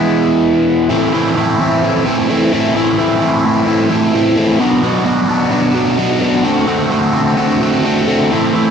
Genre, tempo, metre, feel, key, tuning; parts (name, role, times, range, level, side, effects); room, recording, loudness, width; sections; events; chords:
rock; 130 BPM; 4/4; straight; A dorian; A4 = 440 Hz
crunchy overdriven guitar; solo; 0.0-8.7 s; A2 to F#4; -11 LUFS; equal; phaser
moderate studio reverb, RT60 0.7 s; dark, warm production; -11 LUFS; side -7 dB against mid
0.9-8.7 A section
0.0 E; 0.9 Am; 4.6 Bm; 6.5 D7